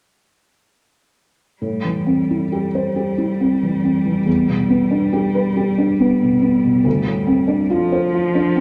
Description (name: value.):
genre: neoclassical piano and strings.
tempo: 69 BPM.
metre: 3/4.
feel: rubato.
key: unclear.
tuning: A4 = 441 Hz.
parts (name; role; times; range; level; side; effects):
rich cello; second line; 1.6-8.6 s; F3 to G3; -23 LUFS; equal; none.
felt-muted upright piano; accompaniment; 1.6-8.6 s; D2 to C5; -19 LUFS; equal; none.
room: wet large studio reverb, RT60 1.3 s.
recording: none.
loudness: -18 LUFS.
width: mono.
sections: 1.6-8.6 A section.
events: none.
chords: 1.6 Am7; 4.3 Em7; 6.9 Dm7.